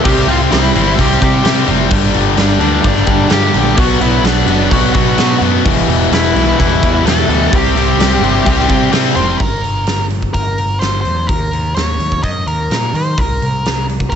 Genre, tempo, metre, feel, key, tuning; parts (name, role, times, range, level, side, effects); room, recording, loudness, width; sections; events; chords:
quiet-loud alternative rock; 128 BPM; 4/4; straight; A4 = 440 Hz
muted studio string section; sustained chords; 0.0-9.4 s; F#4 to C6; -26 LUFS; left 1 dB
distorted electric guitar; riff; 0.0-9.4 s; E2 to C4; -17 LUFS; left 14 dB; overdrive
overdriven electric guitar; riff; 0.0-9.4 s; G2 to E4; -21 LUFS; left 1 dB
thick fuzz guitar; riff; 0.0-9.4 s; E2 to C4; -18 LUFS; right 12 dB; distortion
octave-fuzz lead guitar; melody; 0.1-14.2 s; D4 to A5; -18 LUFS; equal; distortion, tape echo
overdriven picked electric bass; bass; 0.1-14.2 s; E1 to Eb3; -17 LUFS; equal
big rock drum kit; drums; 0.1-14.2 s; crash cymbal, hi-hat, kick drum, snare drum; -17 LUFS; equal
studio ambience; nothing above 8.0 kHz; -11 LUFS; side -8 dB against mid
0.0-9.4 A section; 9.4-14.2 B section
0.0 C; 1.9 Gm; 3.8 Bm; 5.7 Em; 7.5 C; 9.4 Gm; 11.3 Eb5; 13.2 N.C.